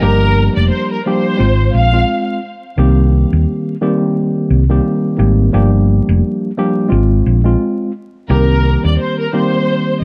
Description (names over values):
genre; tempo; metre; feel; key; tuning
hip hop, boom-bap hip-hop; 87 BPM; 4/4; swing 59% on 16ths; C minor; A4 = 440 Hz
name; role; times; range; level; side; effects
warm studio violin section; melody; 0.0-2.3, 8.3-10.0 s; Bb4 to F5; -21 LUFS; equal; high-pass filter, low-pass filter, delay
mellow tine electric piano; accompaniment; 0.0-10.0 s; Eb3 to G4; -18 LUFS; equal; cassette tape, high-pass filter, low-pass filter
hollow-body short-scale fingered electric bass; bass; 0.0-9.0 s; F1 to Eb2; -14 LUFS; equal; none
room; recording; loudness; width
studio ambience; vinyl crackle; -14 LUFS; mono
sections
0.0-10.0 A section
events
none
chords
0.0 Gm7; 1.4 Fm/Ab; 2.8 Cm7; 5.5 Gm7; 6.9 Fm/Ab; 8.3 Cm7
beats
| 0.02 0.71 1.40 2.09 | 2.78 3.46 4.16 4.84 | 5.53 6.22 6.91 7.60 | 8.29 8.98 9.67